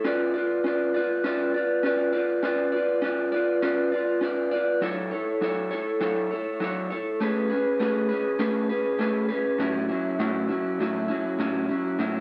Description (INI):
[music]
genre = indie pop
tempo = 100 BPM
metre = 4/4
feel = straight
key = A major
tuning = A4 = 439 Hz
[part]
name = electric guitar through a small old amp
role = solo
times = 0.0-12.2 s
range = A2 to D5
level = -26 LUFS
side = equal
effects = subtle chorus, vibrato effect, slapback echo
[sound]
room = light reverb, digital ambience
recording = none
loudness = -26 LUFS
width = mono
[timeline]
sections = 0.0-9.6 A section; 9.6-12.2 B section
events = none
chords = 0.0 C#7b9; 4.8 F#m7; 7.2 Amaj9; 9.6 A6